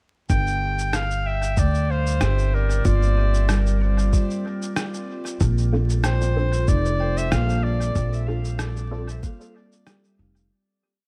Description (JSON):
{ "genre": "ambient dub", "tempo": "94 BPM", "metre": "4/4", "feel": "swing 55% on 16ths", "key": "G minor", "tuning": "A4 = 441 Hz", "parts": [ { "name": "bright clarinet", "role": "melody", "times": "0.3-8.3 s", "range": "Bb4 to G5", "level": "-31 LUFS", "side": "equal", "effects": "tape echo" }, { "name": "warbly tape-like pad", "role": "sustained chords", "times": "1.5-10.5 s", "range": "G3 to Bb4", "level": "-38 LUFS", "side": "equal", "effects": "chorus, built-in reverb" }, { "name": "upright bass", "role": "bass", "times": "0.3-10.5 s", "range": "F1 to D2", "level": "-24 LUFS", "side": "equal", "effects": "none" }, { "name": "electronic kick drum", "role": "drums", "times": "0.3-9.4 s", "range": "none", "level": "-24 LUFS", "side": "equal", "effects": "overdrive" }, { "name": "electronic shaker and rim click", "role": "drums", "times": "0.3-10.5 s", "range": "none", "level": "-33 LUFS", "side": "equal", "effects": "overdrive, dub echo" }, { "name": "kalimba", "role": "arpeggios", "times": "2.2-11.1 s", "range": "G3 to G5", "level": "-34 LUFS", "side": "equal", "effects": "tape echo" }, { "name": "filtered dub chord stab", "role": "stabs", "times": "5.7-9.1 s", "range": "C4 to A4", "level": "-36 LUFS", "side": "equal", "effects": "phaser, ensemble chorus, dub echo" } ], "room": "little or no reverb", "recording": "vinyl crackle", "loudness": "-22 LUFS", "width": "mono", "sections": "0.3-10.5 groove", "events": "fade-in on ambient pad 0.3-10.5; fade-out 7.1-10.5", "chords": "0.3 Gm7; 5.4 Bbmaj7", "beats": "| 0.30 0.94 1.57 2.21 | 2.85 3.49 4.13 4.76 | 5.40 6.04 6.68 7.32 | 7.96 8.59 9.23 9.87" }